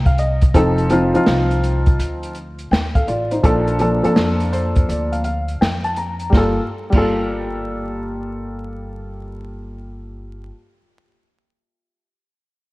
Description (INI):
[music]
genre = hip hop, jazz-hop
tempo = 83 BPM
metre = 4/4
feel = swing 66% on 16ths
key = G minor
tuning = A4 = 439 Hz
[part]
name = warm upright piano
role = accompaniment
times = 0.0-10.5 s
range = F3 to Bb5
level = -20 LUFS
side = equal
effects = none
[part]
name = upright bass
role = bass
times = 0.0-10.5 s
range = F1 to F2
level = -23 LUFS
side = equal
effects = none
[part]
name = open jazz drum kit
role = drums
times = 0.1-7.1 s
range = crash cymbal, hi-hat, kick drum, snare drum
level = -18 LUFS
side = equal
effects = none
[sound]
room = light reverb, studio reverb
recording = worn, warbling old tape, cassette tape, vinyl crackle, warbly pitch drift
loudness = -16 LUFS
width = side -21 dB against mid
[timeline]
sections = 0.0-6.3 A section; 6.3-9.2 B section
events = upright piano fill 0.0-0.5, 4.2-6.3; break 4.9-6.3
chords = 0.0 Cm; 0.5 F7; 3.4 Bbmaj7; 6.3 Gm9